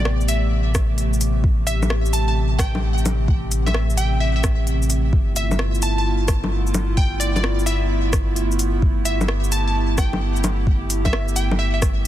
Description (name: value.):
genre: future garage.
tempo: 130 BPM.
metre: 4/4.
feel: swing 67% on 16ths.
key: unclear.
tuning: A4 = 440 Hz.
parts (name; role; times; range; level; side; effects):
glassy wavetable pluck; melody; 0.0-11.8 s; D5 to A5; -28 LUFS; equal; chorus, digital delay.
warbly tape-like pad; sustained chords; 0.0-12.1 s; C3 to G4; -26 LUFS; right 1 dB; chorus, built-in reverb, sidechain pumping.
warm sub bass; bass; 0.0-12.1 s; G1 to A1; -21 LUFS; equal; sidechain pumping.
organic electronic drum kit; drums; 0.1-12.1 s; bongos, hi-hat, rim click, shaker; -26 LUFS; left 1 dB; overdrive.
electronic kick drum; drums; 0.7-11.9 s; none; -20 LUFS; equal; overdrive.
room: little or no reverb.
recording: dense, heavily limited modern master.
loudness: -18 LUFS.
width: side -12 dB against mid.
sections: 0.0-12.1 A section.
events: none.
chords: 0.0 Am9; 5.1 G13.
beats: 0.05 0.52 0.98 | 1.44 1.90 2.36 2.82 | 3.28 3.75 4.21 4.67 | 5.13 5.59 6.05 6.51 | 6.98 7.44 7.90 8.36 | 8.82 9.28 9.74 10.21 | 10.67 11.13 11.59 12.05.